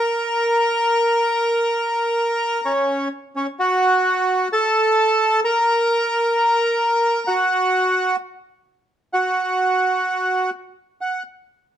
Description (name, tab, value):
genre	tango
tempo	free time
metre	none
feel	none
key	unclear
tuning	A4 = 440 Hz
part	bandoneon	solo	0.0-11.2 s	C#4 to A#5	-17 LUFS	equal	none
room	moderate large studio reverb, RT60 0.9 s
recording	dark, warm production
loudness	-17 LUFS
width	side -10 dB against mid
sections	0.0-11.0 A section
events	none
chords	0.0 N.C.; 1.7 A#m; 3.6 N.C.